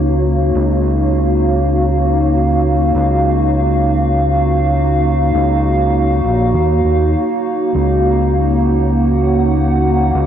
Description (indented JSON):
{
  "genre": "ambient dub",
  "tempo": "100 BPM",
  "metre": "4/4",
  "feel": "swing 56% on 16ths",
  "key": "Eb minor",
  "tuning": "A4 = 440 Hz",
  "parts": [
    { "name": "warbly tape-like pad", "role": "sustained chords", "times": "0.0-10.3 s", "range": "Bb3 to Gb5", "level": "-15 LUFS", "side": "equal", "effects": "chorus, built-in reverb" },
    { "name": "overdriven fingered electric bass", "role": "bass", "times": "0.0-10.3 s", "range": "Bb1 to Eb2", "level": "-15 LUFS", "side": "equal", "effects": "none" }
  ],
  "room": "wet huge ambient reverb, RT60 4.5 s",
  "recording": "dreamy mix soaked in reverb",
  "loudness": "-12 LUFS",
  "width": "side -9 dB against mid",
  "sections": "0.0-10.3 A section",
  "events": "none",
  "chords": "0.0 Ebm9"
}